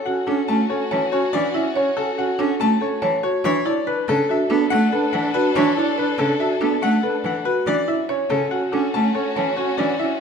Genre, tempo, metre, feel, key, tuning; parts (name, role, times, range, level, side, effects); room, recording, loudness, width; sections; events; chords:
classical, minimalist pattern music; 142 BPM; 5/4; straight; A4 = 439 Hz
bright baby grand piano; melody; 0.0-10.2 s; A4 to A5; -23 LUFS; left 7 dB
rich chamber string section; sustained chords; 0.0-10.2 s; C#4 to A4; -29 LUFS; left 1 dB
buzzing marimba with hard mallets; arpeggios; 0.0-10.2 s; C#4 to C#5; -23 LUFS; right 5 dB
dark clarinet; second line; 0.1-10.2 s; C#4 to D4; -27 LUFS; right 2 dB
clear cello; accompaniment; 0.3-9.9 s; C#3 to C#4; -24 LUFS; right 1 dB
wet recital hall reverb, RT60 1.5 s; minimal, uncompressed stereo recording; -18 LUFS; side -6 dB against mid
0.0-10.2 A section
0.0 Dmaj7; 3.4 Bm11; 7.7 Dmaj7